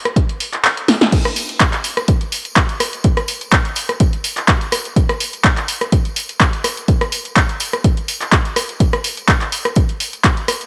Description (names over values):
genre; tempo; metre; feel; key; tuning
house; 125 BPM; 4/4; swing 54% on 16ths; none; none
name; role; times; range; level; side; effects
punchy analog drum machine; drums; 0.1-10.7 s; crash cymbal, handclaps, hi-hat, rim click, snare drum; -19 LUFS; equal; sidechain pumping on hats, cassette tape, sidechain pumping on cymbals
tambourine; percussion; 0.1-10.7 s; none; -33 LUFS; equal; sidechain pumping on perc, low-pass filter on perc
electronic kick drum; drums; 0.2-10.3 s; none; -17 LUFS; equal; cassette tape
room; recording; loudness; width
light reverb, digital ambience; home recording on cassette; -17 LUFS; mono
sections
0.0-1.1 A section; 1.1-10.7 B section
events
kick drops out 0.6-1.1; drum fill 0.9; drop 1.1-10.7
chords
none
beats
0.16 0.64 | 1.12 1.60 2.08 2.56 | 3.04 3.52 4.00 4.48 | 4.96 5.44 5.92 6.40 | 6.88 7.36 7.84 8.32 | 8.80 9.28 9.76 10.24